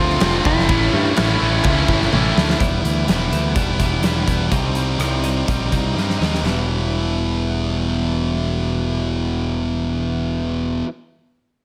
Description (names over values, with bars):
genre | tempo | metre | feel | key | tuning
quiet-loud alternative rock | 124 BPM | 4/4 | straight | unclear | A4 = 441 Hz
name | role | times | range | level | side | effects
lightly driven lead guitar | melody | 0.0-2.1 s | E4 to F4 | -26 LUFS | equal | analog delay
high-gain distorted guitar | riff | 0.0-2.6 s | A2 to F4 | -26 LUFS | equal | distortion
tight distorted guitar | riff | 0.0-10.9 s | E2 to F4 | -24 LUFS | equal | distortion
tight distorted guitar | riff | 0.0-2.6 s | F2 to A3 | -28 LUFS | equal | distortion
growling picked electric bass | bass | 0.0-10.8 s | E1 to G2 | -24 LUFS | equal | overdrive
big rock drum kit | drums | 0.1-6.6 s | crash cymbal, hi-hat, kick drum, rim click, snare drum, toms | -24 LUFS | equal | none
twelve-string electric guitar | arpeggios | 2.6-10.9 s | C3 to E4 | -30 LUFS | equal | subtle chorus
room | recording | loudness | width
light reverb, small room ambience | none | -19 LUFS | mono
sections
0.0-2.6 A section; 2.6-6.4 B section; 6.4-10.3 C section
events
drum fill 2.1-2.6, 6.0-6.4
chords
0.0 F; 0.7 A; 2.6 Em; 4.5 Cm; 6.4 Em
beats
0.21 | 0.69 1.16 1.64 2.12 | 2.60 3.08 3.56 4.04 | 4.52 5.00 5.48 5.96 | 6.45 6.93 7.41 7.89 | 8.38 8.86 9.34 9.83